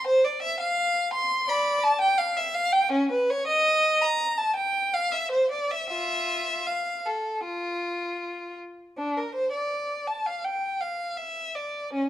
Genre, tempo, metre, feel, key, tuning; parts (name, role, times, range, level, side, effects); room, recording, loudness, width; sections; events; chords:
classical, baroque-style suite movement for unaccompanied violin; 76-86 BPM; 4/4; rubato; F major, D minor from 9.0 s; A4 = 438 Hz
rich violin; solo; 0.0-12.1 s; C#4 to C6; -24 LUFS; equal
moderate recital hall reverb, RT60 1.3 s; close, detailed microphones; -24 LUFS; side -13 dB against mid
0.0-9.0 A section; 9.0-12.1 A section